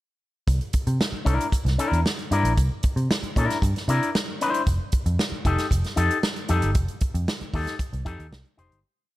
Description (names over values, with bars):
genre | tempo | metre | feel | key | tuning
funk | 115 BPM | 4/4 | straight | unclear | A4 = 440 Hz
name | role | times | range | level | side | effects
vintage muted picked electric bass | bass | 0.5-8.8 s | F1 to C3 | -23 LUFS | equal | none
swinging big-band drum kit | drums | 0.5-8.8 s | hi-hat, kick drum, snare drum | -25 LUFS | right 1 dB | none
electric guitar with an envelope filter | accompaniment | 1.2-8.8 s | D4 to C5 | -26 LUFS | left 3 dB | none
room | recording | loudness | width
studio reverb | none | -21 LUFS | side -16 dB against mid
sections
0.5-8.8 breakdown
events
fade-out 6.8-8.8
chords
0.5 C9; 4.7 F9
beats
| 0.48 1.00 1.53 2.05 | 2.58 3.10 3.62 4.15 | 4.67 5.19 5.71 6.24 | 6.76 7.28 7.80 8.32